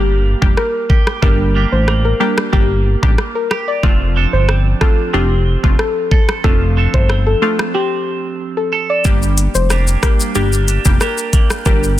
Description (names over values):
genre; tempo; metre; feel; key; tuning
dancehall; 92 BPM; 4/4; straight; G minor; A4 = 440 Hz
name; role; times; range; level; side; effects
soft round pluck; melody; 0.0-11.9 s; G4 to D5; -20 LUFS; left 2 dB; chorus
wavetable chord stab; accompaniment; 0.0-12.0 s; G3 to G4; -22 LUFS; equal; sidechain pumping
clean electric guitar; arpeggios; 0.0-12.0 s; F3 to A4; -23 LUFS; right 7 dB; lush chorus
fat analog bass; bass; 0.0-12.0 s; F1 to A1; -15 LUFS; equal; none
island pop drum kit; drums; 0.4-12.0 s; hi-hat, kick drum, rim click, shaker; -14 LUFS; equal; soft clipping on snare
room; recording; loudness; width
little or no reverb; dense, heavily limited modern master; -12 LUFS; side -13 dB against mid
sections
0.0-9.1 A section; 9.1-12.0 B section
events
break 7.7-9.1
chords
0.0 Gm; 3.8 Dm7/F; 9.1 Gm